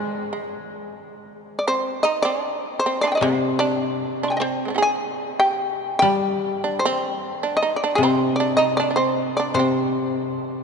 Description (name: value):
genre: japanese traditional, Japanese chamber music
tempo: 76 BPM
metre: 2/4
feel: rubato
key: C hirajoshi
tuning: A4 = 440 Hz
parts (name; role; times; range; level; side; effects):
- shamisen; melody; 0.0-10.3 s; Ab4 to C6; -23 LUFS; left 1 dB; none
- shamisen; second line; 0.0-10.4 s; Ab3 to Ab4; -26 LUFS; right 3 dB; none
- koto; accompaniment; 0.0-10.6 s; C3 to Ab3; -25 LUFS; left 2 dB; none
room: wet cathedral reverb, RT60 5.2 s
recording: dark, warm production, nothing above 10.7 kHz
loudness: -19 LUFS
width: side -6 dB against mid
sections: 0.0-10.6 A section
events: none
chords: none